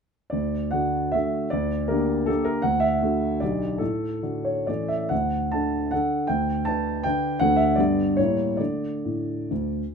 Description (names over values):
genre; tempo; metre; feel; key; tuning
classical, romantic triple-time dance for piano with dotted rhythms; 127-174 BPM; 3/4; rubato; D major; A4 = 440 Hz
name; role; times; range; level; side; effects
warm concert grand piano; solo; 0.3-9.8 s; B1 to A5; -22 LUFS; equal; none
room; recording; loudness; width
light reverb; minimal, uncompressed stereo recording; -22 LUFS; side -6 dB against mid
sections
0.3-9.9 A section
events
none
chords
0.3 D; 1.5 Gm/D; 2.6 D; 3.4 G/B; 3.8 D/A; 4.7 A; 5.1 D; 6.3 G/D; 7.4 D; 7.8 G; 8.2 A7b9; 8.6 D5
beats
| 0.32 0.73 1.14 | 1.51 1.90 2.28 | 2.64 3.01 3.41 | 3.81 4.24 4.69 | 5.11 5.52 5.92 | 6.29 6.67 7.05 | 7.40 7.78 8.18 | 8.59 9.04 9.50